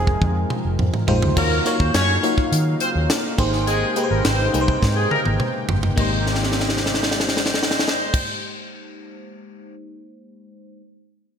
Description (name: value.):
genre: polished 1980s jazz-funk pop.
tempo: 104 BPM.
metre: 4/4.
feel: straight.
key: Ab major.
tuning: A4 = 441 Hz.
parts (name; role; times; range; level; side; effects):
mellow flugelhorn; melody; 0.0-0.8 s; Ab4; -29 LUFS; right 1 dB; ping-pong delay.
FM electric piano; accompaniment; 0.0-10.8 s; Ab3 to G5; -25 LUFS; left 1 dB; lush chorus.
warm analog pad; sustained chords; 0.0-8.2 s; C3 to G5; -29 LUFS; equal; chorus.
vintage muted fingered electric bass; bass; 0.0-8.2 s; F1 to Eb3; -22 LUFS; equal; none.
tight funk drum kit; drums; 0.1-9.7 s; crash cymbal, hi-hat, kick drum, snare drum, toms; -22 LUFS; equal; gated reverb.
warm horn section; second line; 1.4-8.2 s; G3 to Db5; -25 LUFS; equal; none.
room: moderate lush hall reverb, RT60 1.7 s, small room ambience.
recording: bright 1980s-style digital production.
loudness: -17 LUFS.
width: side -7 dB against mid.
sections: 0.0-1.4 A section; 1.4-6.0 B section; 6.0-8.3 C section.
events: drum fill 0.2-1.4, 4.8-6.0, 6.3-8.1.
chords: 0.0 Fm9; 1.4 Ebm9; 3.4 Abmaj9.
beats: 0.22 0.79 | 1.37 1.94 2.52 3.09 | 3.67 4.25 4.82 5.40 | 5.98 6.55 7.13 7.71.